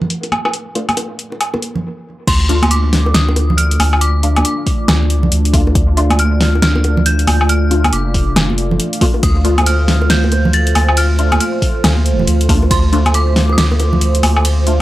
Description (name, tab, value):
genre	deep dubstep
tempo	138 BPM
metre	4/4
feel	swing 61% on 16ths, half-time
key	D minor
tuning	A4 = 440 Hz
part	dark analog pad	sustained chords	0.1-14.8 s	A3 to F5	-21 LUFS	right 1 dB	chorus
part	congas and bongos	percussion	0.0-14.3 s	none	-22 LUFS	right 1 dB	none
part	deep house drum kit	drums	0.1-14.8 s	crash cymbal, hi-hat, ride cymbal, snare drum, woodblock	-17 LUFS	equal	none
part	filtered dub chord stab	stabs	0.8-14.8 s	A3 to F4	-22 LUFS	left 3 dB	phaser, ensemble chorus, cassette tape, dub echo
part	dark detuned synth bell	melody	2.3-14.8 s	C6 to A6	-22 LUFS	equal	chorus, tremolo, dub echo
part	soft dub sub bass	bass	2.3-14.8 s	F1 to D2	-14 LUFS	equal	tube saturation
part	electronic kick drum	drums	2.3-12.8 s	none	-15 LUFS	equal	none
room	light reverb, digital ambience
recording	dry, gritty hardware recording, low-pass filter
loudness	-11 LUFS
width	side -16 dB against mid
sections	0.0-2.3 A section; 2.3-14.8 B section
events	filter sweep on synth stab 0.0-2.3; filter sweep 0.0-2.3; stop 1.8-2.3; drop 2.3-14.8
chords	0.0 Dm (rootless); 2.3 Dm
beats	0.10 | 0.53 0.97 1.40 1.84 | 2.27 2.71 3.14 3.58 | 4.01 4.45 4.88 5.32 | 5.75 6.19 6.62 7.06 | 7.49 7.93 8.36 8.79 | 9.23 9.66 10.10 10.53 | 10.97 11.40 11.84 12.27 | 12.71 13.14 13.58 14.01 | 14.45